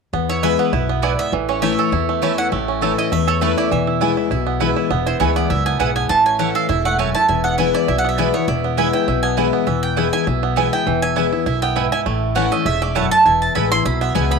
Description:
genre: bluegrass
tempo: 201 BPM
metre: 4/4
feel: swing 54% on 8ths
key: E major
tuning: A4 = 439 Hz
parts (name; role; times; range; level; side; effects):
- picked steel-string acoustic guitar; accompaniment; 0.1-14.4 s; E2 to E4; -21 LUFS; left 16 dB; none
- bluegrass banjo; arpeggios; 0.1-14.4 s; E3 to A4; -22 LUFS; right 11 dB; none
- upright bass; bass; 0.1-14.4 s; E1 to E2; -23 LUFS; equal; none
- mandolin; melody; 0.3-14.4 s; B4 to C6; -20 LUFS; right 2 dB; none
- mandolin; stabs; 0.4-14.2 s; A3 to A5; -24 LUFS; right 11 dB; none
room: moderate spring reverb, RT60 1.3 s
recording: 1960s-style stereo with parts hard left and right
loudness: -15 LUFS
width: side -5 dB against mid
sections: 0.1-14.4 A section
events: none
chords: 0.1 E; 1.3 A; 3.7 E; 6.1 A; 7.3 E; 12.1 A; 13.3 E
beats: | 0.13 0.43 0.73 1.03 | 1.33 1.63 1.93 2.22 | 2.52 2.82 3.12 3.42 | 3.71 4.01 4.31 4.61 | 4.91 5.21 5.50 5.80 | 6.10 6.40 6.69 6.99 | 7.29 7.59 7.89 8.18 | 8.48 8.78 9.08 9.38 | 9.67 9.97 10.27 10.57 | 10.87 11.16 11.46 11.76 | 12.06 12.36 12.66 12.96 | 13.25 13.55 13.85 14.15

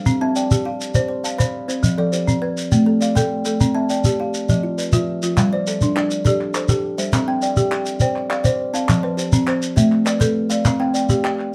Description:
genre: southern african traditional, mbira-style interlocking cycle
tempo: 136 BPM (dotted quarters)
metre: 12/8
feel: straight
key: unclear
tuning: A4 = 440 Hz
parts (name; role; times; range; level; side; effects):
- kalimba; arpeggios; 0.0-11.5 s; F3 to B5; -25 LUFS; equal; none
- folk marimba with medium hard mallets; arpeggios; 0.1-11.5 s; F3 to A5; -23 LUFS; equal; none
- shekere; percussion; 0.1-11.2 s; none; -22 LUFS; equal; none
- group handclap; percussion; 5.4-11.5 s; none; -29 LUFS; equal; none
room: moderate studio reverb, RT60 0.6 s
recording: dark, warm production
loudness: -19 LUFS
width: mono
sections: 0.0-5.4 A section; 5.4-11.5 B section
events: none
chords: 0.1 C; 1.8 F; 2.7 Am; 3.6 C; 4.5 Dm69/F; 5.4 G5; 7.1 C; 8.9 F; 9.8 Am; 10.7 C5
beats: | 0.06 0.50 0.95 1.39 | 1.83 2.27 2.72 3.16 | 3.60 4.04 4.48 4.92 | 5.37 5.81 6.25 6.69 | 7.13 7.57 8.01 8.45 | 8.89 9.33 9.77 10.21 | 10.65 11.10 11.54

